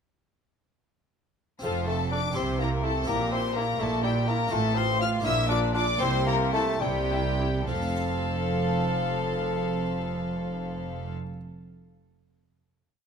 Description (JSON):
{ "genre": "classical, baroque-style concerto movement with solo episodes", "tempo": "68-84 BPM (dotted quarters)", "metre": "6/8", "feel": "straight", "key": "F major", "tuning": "A4 = 440 Hz", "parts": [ { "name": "warm bassoon", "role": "melody", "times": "1.6-11.1 s", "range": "F3 to F4", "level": "-31 LUFS", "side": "left 2 dB", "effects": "none" }, { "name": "warm chamber violin section", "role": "melody", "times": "1.6-11.1 s", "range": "F5 to F6", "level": "-33 LUFS", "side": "left 6 dB", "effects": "none" }, { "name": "rich chamber violin section", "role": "second line", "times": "1.6-11.1 s", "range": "F4 to F5", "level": "-34 LUFS", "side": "left 4 dB", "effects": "none" }, { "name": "dark chamber viola section", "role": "accompaniment", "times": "1.6-11.1 s", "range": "E4 to A4", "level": "-35 LUFS", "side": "left 1 dB", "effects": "none" }, { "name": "harpsichord", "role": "accompaniment", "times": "1.6-11.4 s", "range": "F2 to C5", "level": "-36 LUFS", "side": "equal", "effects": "none" }, { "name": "rich chamber double bass section", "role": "bass", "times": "1.6-11.1 s", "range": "F1 to C2", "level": "-31 LUFS", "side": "right 3 dB", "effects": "none" }, { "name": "warm chamber cello section", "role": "bass", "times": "1.6-11.1 s", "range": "F2 to C3", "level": "-32 LUFS", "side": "right 3 dB", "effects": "none" } ], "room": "moderate scoring stage reverb, RT60 1.9 s", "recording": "none", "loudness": "-24 LUFS", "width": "side -6 dB against mid", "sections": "1.6-7.7 ritornello; 7.7-11.2 final chord", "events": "slowing down 3.8-7.7", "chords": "1.6 F; 2.4 C; 3.1 C7/Bb; 4.5 F/A; 5.2 Bb; 6.0 C7; 7.7 F" }